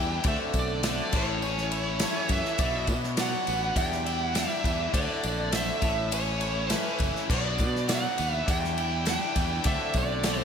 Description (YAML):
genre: folk rock and heartland rock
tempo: 102 BPM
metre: 4/4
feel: straight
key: E minor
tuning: A4 = 440 Hz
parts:
  - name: bluesy overdriven lead guitar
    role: melody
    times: 0.0-10.4 s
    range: C#5 to G5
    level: -31 LUFS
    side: right 2 dB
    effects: distortion, slapback echo
  - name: clear grand piano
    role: accompaniment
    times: 0.0-10.4 s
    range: E4 to E5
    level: -40 LUFS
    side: left 6 dB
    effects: none
  - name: picked twelve-string acoustic guitar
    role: accompaniment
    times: 0.0-10.4 s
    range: E2 to F#4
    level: -37 LUFS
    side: left 3 dB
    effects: slapback echo
  - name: tonewheel organ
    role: sustained chords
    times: 0.0-10.4 s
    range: E3 to D5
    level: -43 LUFS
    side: right 1 dB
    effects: none
  - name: biting overdriven guitar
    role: riff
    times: 0.0-10.4 s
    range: E2 to E4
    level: -32 LUFS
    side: equal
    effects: slapback echo
  - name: fingered electric bass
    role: bass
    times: 0.0-10.4 s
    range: F#1 to B2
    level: -32 LUFS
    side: equal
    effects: none
  - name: natural country drum kit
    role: drums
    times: 0.2-10.4 s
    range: crash cymbal, kick drum, ride cymbal, snare drum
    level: -30 LUFS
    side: equal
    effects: none
  - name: tambourine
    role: percussion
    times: 0.5-10.4 s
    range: none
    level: -44 LUFS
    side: right 8 dB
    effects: none
room: moderate lush hall reverb, RT60 2.2 s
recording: big arena sound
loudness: -25 LUFS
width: side -7 dB against mid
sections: 0.0-10.4 A section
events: none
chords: 0.2 D7; 1.1 A; 2.6 Bm; 3.8 Em7; 4.9 D7; 5.8 A; 7.3 Bm; 8.5 Em7; 9.7 D7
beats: | 0.24 0.83 1.42 2.00 | 2.59 3.18 3.76 4.35 | 4.94 5.53 6.11 6.70 | 7.29 7.88 8.47 9.06 | 9.65 10.24